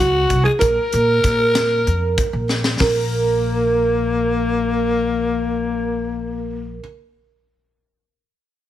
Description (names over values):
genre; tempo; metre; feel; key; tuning
progressive instrumental, band music in an uneven meter; 192 BPM (eighths); 7/8; straight; unclear; A4 = 440 Hz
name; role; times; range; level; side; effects
felt-muted upright piano; melody; 0.0-6.8 s; Gb4 to Bb4; -21 LUFS; right 3 dB; plate reverb
growling alto saxophone; second line; 0.0-6.8 s; Bb3 to Bb4; -21 LUFS; left 5 dB; none
upright bass; bass; 0.0-6.8 s; Bb1 to Bb2; -23 LUFS; equal; none
crisp fusion drum kit; drums; 0.3-2.9 s; hi-hat, kick drum, snare drum; -22 LUFS; left 1 dB; none
room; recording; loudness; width
light reverb; heavily compressed radio sound, multiband compression; -16 LUFS; side -12 dB against mid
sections
0.0-2.8 A section; 2.8-7.2 B section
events
drum fill 2.5-2.8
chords
0.0 Gb5; 0.6 Bb5; 2.8 N.C.